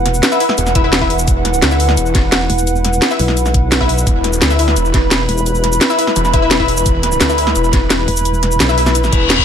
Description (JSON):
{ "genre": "dark technical drum and bass", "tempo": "172 BPM", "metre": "4/4", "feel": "straight", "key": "unclear", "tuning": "A4 = 437 Hz", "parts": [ { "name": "dark analog pad", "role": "sustained chords", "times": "0.0-9.4 s", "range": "E4 to B5", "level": "-18 LUFS", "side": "right 1 dB", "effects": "chorus, sidechain pumping" }, { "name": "orchestra-hit-like synth stab", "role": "stabs", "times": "0.0-8.8 s", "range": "E4 to E5", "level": "-19 LUFS", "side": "left 4 dB", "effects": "built-in reverb, digital delay" }, { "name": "pulsing pluck wobble bass", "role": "bass", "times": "0.0-0.2, 2.5-5.8, 8.1-9.1 s", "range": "E1 to B1", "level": "-16 LUFS", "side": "equal", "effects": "chorus" }, { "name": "drum and bass drum kit", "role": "drums", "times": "0.1-9.4 s", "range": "hi-hat, shaker, snare drum", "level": "-16 LUFS", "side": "equal", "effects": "none" }, { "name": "snarling distorted saw bass", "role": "bass", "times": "0.6-9.4 s", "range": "E1 to D2", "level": "-17 LUFS", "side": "equal", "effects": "distortion, overdrive, sidechain pumping" }, { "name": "electronic kick drum", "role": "drums", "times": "0.8-9.4 s", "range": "none", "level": "-15 LUFS", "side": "equal", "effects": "none" }, { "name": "reverse cymbal", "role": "sound effects", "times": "9.1-9.4 s", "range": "none", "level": "-15 LUFS", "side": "left 7 dB", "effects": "none" } ], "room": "light reverb, digital ambience", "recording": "none", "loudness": "-11 LUFS", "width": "side -8 dB against mid", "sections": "0.0-9.4 A section", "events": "reverse cymbal 9.1-9.4", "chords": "0.0 Esus2", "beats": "0.23 0.58 0.93 | 1.28 1.62 1.97 2.32 | 2.67 3.02 3.37 3.72 | 4.07 4.42 4.76 5.11 | 5.46 5.81 6.16 6.51 | 6.86 7.21 7.55 7.90 | 8.25 8.60 8.95 9.30" }